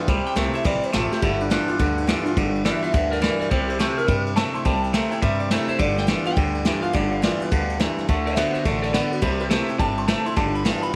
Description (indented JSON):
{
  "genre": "rockabilly",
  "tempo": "210 BPM",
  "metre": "4/4",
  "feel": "swing 62% on 8ths",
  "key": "G mixolydian",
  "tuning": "A4 = 444 Hz",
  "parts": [
    { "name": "electric guitar through a small old amp", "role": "melody", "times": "0.0-10.9 s", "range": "D4 to C6", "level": "-29 LUFS", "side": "equal", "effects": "phaser, tape echo" },
    { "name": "picked swing-style acoustic guitar", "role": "accompaniment", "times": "0.0-10.9 s", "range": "G2 to F#4", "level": "-32 LUFS", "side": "equal", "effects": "none" },
    { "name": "twangy electric guitar", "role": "riff", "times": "0.0-10.9 s", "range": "G2 to B3", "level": "-27 LUFS", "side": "equal", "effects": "none" },
    { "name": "upright bass", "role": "bass", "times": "0.1-10.9 s", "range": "G1 to G2", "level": "-30 LUFS", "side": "equal", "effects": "none" },
    { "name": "vintage brush drum kit", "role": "drums", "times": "0.1-10.9 s", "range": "kick drum, ride cymbal, snare drum", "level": "-27 LUFS", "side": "equal", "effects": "none" }
  ],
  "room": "small room ambience",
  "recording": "none",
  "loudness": "-22 LUFS",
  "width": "mono",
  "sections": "0.0-11.0 A section",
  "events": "clean electric guitar solo 0.0-11.0",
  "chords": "0.1 C7; 1.2 G7; 3.5 C7; 5.8 G7; 8.1 D7; 9.2 C7; 10.4 G7"
}